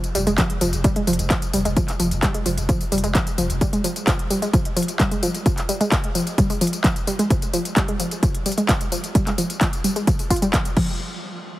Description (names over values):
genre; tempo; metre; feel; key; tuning
driving peak-time techno; 130 BPM; 4/4; straight; F minor; A4 = 440 Hz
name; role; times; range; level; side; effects
techno drum kit; drums; 0.0-10.9 s; crash cymbal, handclaps, hi-hat, tambourine; -26 LUFS; left 1 dB; overdrive
wide unison pluck; riff; 0.1-11.0 s; F3 to F4; -23 LUFS; equal; sidechain pumping, dub echo
warm sub bass; bass; 0.2-3.6 s; F1; -26 LUFS; equal; overdrive, sidechain pumping, low-pass filter
electronic kick drum; drums; 0.4-10.9 s; none; -21 LUFS; equal; overdrive
room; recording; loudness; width
light reverb; heavily compressed radio sound; -18 LUFS; side -16 dB against mid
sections
0.0-11.0 A section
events
none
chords
none